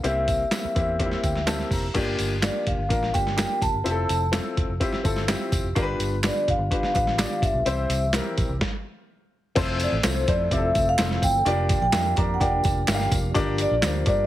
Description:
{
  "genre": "uptempo 1960s-style soul",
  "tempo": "126 BPM",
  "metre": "4/4",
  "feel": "straight",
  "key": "F major",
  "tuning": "A4 = 443 Hz",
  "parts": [
    { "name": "vibraphone with medium mallets", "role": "melody", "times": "0.0-14.3 s", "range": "C5 to Bb5", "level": "-25 LUFS", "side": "equal", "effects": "none" },
    { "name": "clear upright piano", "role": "accompaniment", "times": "0.0-14.3 s", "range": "Bb3 to Bb5", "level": "-28 LUFS", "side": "left 3 dB", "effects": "none" },
    { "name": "vintage muted fingered electric bass", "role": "bass", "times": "0.0-14.3 s", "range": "E1 to G2", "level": "-28 LUFS", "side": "equal", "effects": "none" },
    { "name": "lo-fi sampler-style drum kit", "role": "drums", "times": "0.0-14.2 s", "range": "crash cymbal, hi-hat, kick drum, snare drum", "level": "-26 LUFS", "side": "equal", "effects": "none" },
    { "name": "tambourine and handclaps", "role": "percussion", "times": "0.0-14.2 s", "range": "none", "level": "-35 LUFS", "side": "right 3 dB", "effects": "none" },
    { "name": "percussive tonewheel organ", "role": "sustained chords", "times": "5.8-14.3 s", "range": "D3 to A4", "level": "-35 LUFS", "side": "right 1 dB", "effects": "fast rotary speaker, overdrive, chorus vibrato" }
  ],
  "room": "studio reverb",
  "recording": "heavily compressed radio sound",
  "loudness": "-21 LUFS",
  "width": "side -14 dB against mid",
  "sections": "0.0-1.9 A section; 1.9-9.6 B section; 9.6-14.3 C section",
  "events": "upright piano fill 1.0-1.9; stop 8.6-9.6",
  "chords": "0.0 C7; 1.9 Gm7; 3.9 Fmaj7; 5.8 G7; 7.7 C; 9.6 Fmaj7; 11.5 Bb6/F; 13.4 Gm7",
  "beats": "| 0.04 0.52 0.99 1.47 | 1.95 2.42 2.90 3.38 | 3.85 4.33 4.81 5.28 | 5.76 6.24 6.71 7.19 | 7.66 8.14 8.61 9.09 | 9.56 10.04 10.51 10.99 | 11.46 11.94 12.41 12.88 | 13.36 13.83"
}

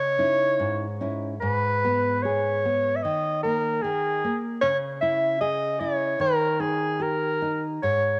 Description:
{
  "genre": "fado-style ballad",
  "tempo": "74 BPM",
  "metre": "2/4",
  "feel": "rubato",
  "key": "G# harmonic minor",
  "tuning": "A4 = 439 Hz",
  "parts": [
    { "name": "breathy soprano saxophone", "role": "melody", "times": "0.0-8.2 s", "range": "G#4 to E5", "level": "-26 LUFS", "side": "equal", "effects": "cassette tape" },
    { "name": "nylon-string guitar", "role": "accompaniment", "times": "0.0-8.2 s", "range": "G#2 to G#4", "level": "-31 LUFS", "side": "equal", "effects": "none" }
  ],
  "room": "moderate spring reverb, RT60 2.4 s",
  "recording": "home recording on cassette",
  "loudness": "-25 LUFS",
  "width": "mono",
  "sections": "0.0-1.4 A section; 1.4-8.2 B section",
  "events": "none",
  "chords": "0.0 C#madd9; 1.4 G#m; 3.0 D#5; 4.6 C#m; 6.2 D#",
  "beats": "0.60 | 1.43 2.24 | 3.04 3.84 | 4.62 5.40 | 6.19 7.00 | 7.83"
}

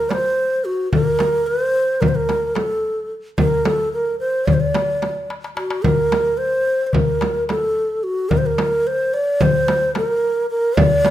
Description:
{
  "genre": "Turkish makam ensemble",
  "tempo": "220 BPM (eighths)",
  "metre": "9/8",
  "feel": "straight",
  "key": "unclear",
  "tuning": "A4 = 441 Hz",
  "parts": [
    { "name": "breathy mellow low ney", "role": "melody", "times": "0.0-11.1 s", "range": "Gb4 to D5", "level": "-18 LUFS", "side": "right 1 dB", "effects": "none" },
    { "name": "darbuka", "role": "percussion", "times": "0.1-11.1 s", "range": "none", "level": "-22 LUFS", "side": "left 5 dB", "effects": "none" },
    { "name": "frame drum", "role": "percussion", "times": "0.1-11.1 s", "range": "none", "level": "-21 LUFS", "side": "right 2 dB", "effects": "none" }
  ],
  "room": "light reverb",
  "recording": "minimal, uncompressed stereo recording",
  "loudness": "-16 LUFS",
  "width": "side -12 dB against mid",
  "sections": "0.0-11.1 A section",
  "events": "drum fill 5.3-5.8",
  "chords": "none",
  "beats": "0.11 0.39 0.66 | 0.93 1.20 1.48 1.75 2.02 2.30 2.57 2.84 3.12 | 3.39 3.66 3.94 4.21 4.48 4.76 5.03 5.30 5.58 | 5.85 6.12 6.40 6.67 6.94 7.22 7.49 7.76 8.04 | 8.31 8.59 8.86 9.13 9.41 9.68 9.95 10.23 10.50 | 10.78 11.05"
}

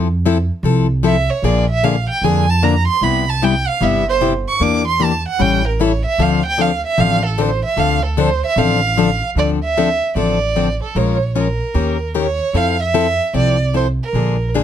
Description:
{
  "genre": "acoustic string swing (jazz manouche)",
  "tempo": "151 BPM",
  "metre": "4/4",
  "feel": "swing 64% on 8ths",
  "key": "D minor",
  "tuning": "A4 = 440 Hz",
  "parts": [
    { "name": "picked plugged-in steel-string acoustic guitar", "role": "accompaniment", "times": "0.0-14.6 s", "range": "C3 to Bb4", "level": "-17 LUFS", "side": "left 6 dB", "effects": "none" },
    { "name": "upright bass", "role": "bass", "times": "0.0-14.6 s", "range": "G1 to F2", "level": "-19 LUFS", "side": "right 1 dB", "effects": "none" },
    { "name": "warm violin", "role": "melody", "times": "1.1-14.5 s", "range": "A4 to D6", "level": "-18 LUFS", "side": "right 4 dB", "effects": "none" }
  ],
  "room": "light reverb",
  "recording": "close, detailed microphones",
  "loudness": "-14 LUFS",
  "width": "side -10 dB against mid",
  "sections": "0.0-9.4 A section; 9.4-14.6 B section",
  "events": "violin solo 0.0-9.4",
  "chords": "0.0 Fmaj7; 1.4 Bb7; 3.0 Cmaj7; 4.6 Em7b5; 5.4 A7; 6.2 Dm7; 11.0 Bbm7; 11.8 Eb7; 12.5 Fmaj7",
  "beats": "0.25 0.64 1.04 | 1.44 1.83 2.23 2.62 | 3.02 3.42 3.81 4.21 | 4.61 5.00 5.40 5.79 | 6.19 6.59 6.99 7.38 | 7.78 8.17 8.57 8.97 | 9.37 9.76 10.16 10.56 | 10.96 11.35 11.75 12.15 | 12.55 12.94 13.34 13.74 | 14.14 14.54"
}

